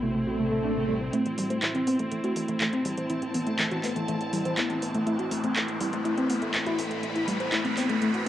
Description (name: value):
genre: melodic techno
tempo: 122 BPM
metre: 4/4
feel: straight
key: A dorian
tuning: A4 = 440 Hz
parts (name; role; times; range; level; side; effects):
- resonant sweep polysynth; melody; 0.0-8.1 s; C3 to E4; -31 LUFS; left 2 dB; chorus, cassette tape, analog delay
- deep dark ambient pad; sustained chords; 0.0-8.3 s; A3 to D5; -38 LUFS; right 1 dB; chorus, built-in reverb, cassette tape
- woody wave-folded pluck; arpeggios; 0.0-8.3 s; G3 to C5; -30 LUFS; equal; chorus, cassette tape, analog delay
- tight sequencer bass; bass; 0.0-8.3 s; G1 to A1; -45 LUFS; equal; none
- bowed-like drone; drone; 0.0-1.2 s; A2 to A3; -43 LUFS; equal; built-in reverb, cassette tape
- rich studio string section; texture; 0.0-8.3 s; C4 to B5; -34 LUFS; equal; cassette tape
- swell and riser; sound effects; 0.3-8.3 s; none; -34 LUFS; right 1 dB; none
- house drum kit; drums; 1.1-8.3 s; handclaps, hi-hat; -30 LUFS; equal; overdrive, cassette tape
room: wet booth ambience, RT60 0.3 s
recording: home recording on cassette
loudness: -25 LUFS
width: side -12 dB against mid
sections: 0.0-1.1 A section; 1.1-8.3 B section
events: filter sweep on synth pluck 0.0-1.1; swell 0.3-1.1; build-up 1.1-8.3; riser 1.1-8.3; filter sweep on analog polysynth 1.1-8.3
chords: 0.0 C/A; 1.1 Am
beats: 0.15 0.64 | 1.13 1.62 2.12 2.61 | 3.10 3.59 4.08 4.58 | 5.07 5.56 6.05 6.54 | 7.03 7.53 8.02